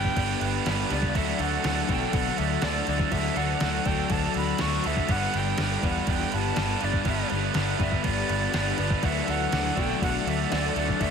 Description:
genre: rock, shoegaze and dream pop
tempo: 122 BPM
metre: 4/4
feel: straight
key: D major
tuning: A4 = 440 Hz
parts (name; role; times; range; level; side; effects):
- breathy bright jazz flute; melody; 0.0-11.1 s; D5 to C#6; -32 LUFS; equal; analog delay
- cranked stack guitar; riff; 0.0-11.1 s; D3 to B4; -29 LUFS; right 14 dB; overdrive, reverse reverb
- overdriven semi-hollow guitar; riff; 0.0-11.1 s; G2 to D4; -30 LUFS; left 13 dB; ensemble chorus
- vintage muted picked electric bass; bass; 0.0-11.1 s; G1 to B2; -30 LUFS; equal; none
- detuned 8-bit digital drum machine; drums; 0.0-11.1 s; crash cymbal, kick drum, snare drum; -30 LUFS; right 1 dB; overdrive
- brassy analog pad; sustained chords; 9.0-11.1 s; D5 to E5; -39 LUFS; equal; chorus
- electric guitar through a small old amp; arpeggios; 9.0-11.1 s; E3 to F#4; -36 LUFS; equal; analog chorus, analog delay
room: light reverb, digital ambience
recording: none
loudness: -23 LUFS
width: side -6 dB against mid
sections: 0.0-11.1 A section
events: none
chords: 0.0 G; 1.2 D; 5.1 G; 9.0 Dadd9

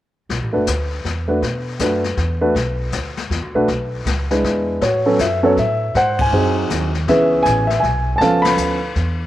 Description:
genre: jazz piano trio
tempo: 159 BPM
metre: 3/4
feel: swing 64% on 8ths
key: A major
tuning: A4 = 440 Hz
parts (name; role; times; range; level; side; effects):
- upright bass; bass; 0.3-9.3 s; F#1 to B2; -22 LUFS; equal; none
- jazz brush drum kit; drums; 0.3-9.3 s; brushed snare drum, hi-hat, kick drum, ride cymbal, snare drum; -26 LUFS; left 4 dB; none
- warm grand piano; melody; 0.5-8.8 s; E3 to B5; -17 LUFS; equal; none
room: wet spring reverb, RT60 1.7 s, studio reverb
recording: 1960s-style stereo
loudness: -16 LUFS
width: side -14 dB against mid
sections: 0.3-4.8 A section; 4.8-9.3 B section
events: band accent 6.1, 8.4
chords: 0.3 Bm7; 1.0 E5; 1.4 Bm7; 2.2 E5; 2.5 Bm; 3.3 E5; 3.7 N.C.; 4.4 E7; 4.8 A69; 5.9 G#7; 7.1 C#m7; 8.2 C#7alt

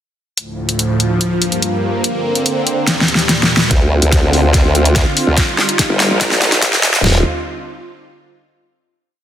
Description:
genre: heavy wobble dubstep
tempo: 144 BPM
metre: 4/4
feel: half-time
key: D phrygian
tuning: A4 = 441 Hz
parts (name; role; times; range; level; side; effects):
- supersaw pad; sustained chords; 0.5-7.2 s; D2 to F4; -18 LUFS; equal; phaser, sidechain pumping
- dubstep drum kit; drums; 0.4-7.0 s; hi-hat, snare drum; -15 LUFS; equal; overdrive, high-pass filter on hats, studio reverb, high-pass filter on snare
- formant-sweep wobble bass; bass; 3.7-7.2 s; D1 to D2; -14 LUFS; equal; chorus, overdrive
- dubstep drum kit; drums; 3.7-7.1 s; kick drum, snare drum, toms; -15 LUFS; equal; overdrive, studio reverb
room: light reverb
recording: dense, heavily limited modern master, high-pass filter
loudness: -12 LUFS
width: side -10 dB against mid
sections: 0.4-3.7 intro; 3.7-7.0 build; 7.0-8.7 final chord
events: drum fill 2.9-3.7, 3.7-7.0; build-up 3.7-7.0; filter sweep 3.7-7.0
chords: 0.4 Dm; 1.2 Gm7; 2.0 Bbadd9; 2.9 Eb; 3.7 Dm7; 5.4 Ebadd9; 7.0 Dm7

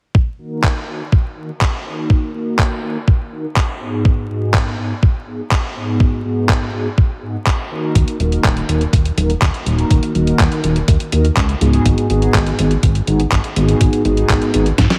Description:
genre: italo disco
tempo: 123 BPM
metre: 4/4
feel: straight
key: unclear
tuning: A4 = 440 Hz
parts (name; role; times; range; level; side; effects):
- electronic kick drum; drums; 0.1-14.9 s; none; -17 LUFS; equal; small room ambience
- mellow synth brass; stabs; 0.4-14.7 s; Ab2 to Bb4; -22 LUFS; equal; chorus, phaser, cassette tape, digital delay
- clean 12-bit digital drum machine; drums; 0.6-15.0 s; handclaps, hi-hat, snare drum; -24 LUFS; equal; small room ambience
- chorused synth bass; bass; 8.0-14.9 s; Eb1 to Ab2; -19 LUFS; equal; none
room: light reverb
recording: heavily compressed radio sound, vinyl crackle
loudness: -16 LUFS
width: mono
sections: 0.1-15.0 A section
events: filter sweep on analog polysynth 0.1-15.0; drum fill 14.8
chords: 0.1 Abm7; 8.0 Ebm; 11.9 Abm7

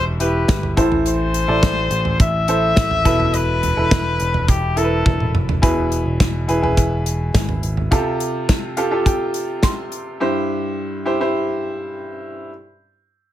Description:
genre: piano-driven pop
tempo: 105 BPM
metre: 4/4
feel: straight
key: unclear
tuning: A4 = 440 Hz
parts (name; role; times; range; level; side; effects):
- clear trumpet; melody; 0.0-5.3 s; G4 to E5; -21 LUFS; left 3 dB; none
- bright upright piano; accompaniment; 0.0-12.5 s; G2 to C6; -21 LUFS; equal; none
- picked electric bass; bass; 0.0-7.9 s; E1 to A1; -22 LUFS; equal; none
- modern studio drum kit; drums; 0.2-10.0 s; hi-hat, kick drum, snare drum, toms; -19 LUFS; equal; none
room: moderate large studio reverb, RT60 0.8 s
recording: none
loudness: -16 LUFS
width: side -12 dB against mid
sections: 0.0-5.6 A section; 5.6-13.3 B section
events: drum fill 5.1-5.6; upright piano fill 8.5-10.2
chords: 0.0 Em; 0.8 Am; 3.1 Esus4; 5.6 E; 7.9 Fadd9; 10.2 C; 12.5 N.C.

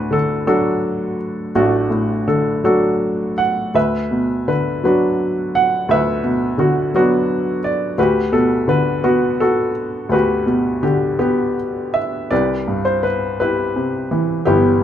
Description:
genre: classical, lyrical solo piano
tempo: 56 BPM (dotted quarters)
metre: 6/8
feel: rubato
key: G major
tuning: A4 = 438 Hz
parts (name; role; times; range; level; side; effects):
- clear upright piano; solo; 0.0-14.8 s; G1 to F#5; -15 LUFS; equal; none
room: moderate studio reverb, RT60 0.6 s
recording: none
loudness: -15 LUFS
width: side -10 dB against mid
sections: 0.0-12.3 A section; 12.3-14.8 B section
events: none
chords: 0.0 D; 3.7 Bm/D; 8.0 Gmaj7/D; 12.3 Cmaj7

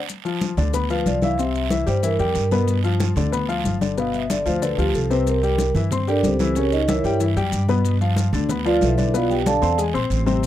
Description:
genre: Afro-Cuban jazz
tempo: 186 BPM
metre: 4/4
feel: straight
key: G mixolydian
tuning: A4 = 439 Hz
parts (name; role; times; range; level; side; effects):
- congas; percussion; 0.1-10.5 s; none; -27 LUFS; left 2 dB; none
- guiro; percussion; 0.1-10.5 s; none; -35 LUFS; right 21 dB; none
- maracas; percussion; 0.1-10.5 s; none; -37 LUFS; left 12 dB; none
- warm grand piano; accompaniment; 0.2-10.5 s; B2 to C6; -24 LUFS; left 6 dB; none
- upright bass; bass; 0.6-10.5 s; G1 to G2; -22 LUFS; right 1 dB; none
- vibraphone with soft mallets; melody; 0.9-9.8 s; C4 to A5; -22 LUFS; right 2 dB; none
room: little or no reverb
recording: dry, close 1970s-style studio recording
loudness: -18 LUFS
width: side -12 dB against mid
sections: 0.1-10.5 A section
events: vibraphone solo 0.1-10.5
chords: 0.1 Dm13; 1.4 C7; 2.7 G7; 5.3 C13; 6.6 C#dim7; 7.9 G13; 9.1 Bm7b5; 9.8 Eaug

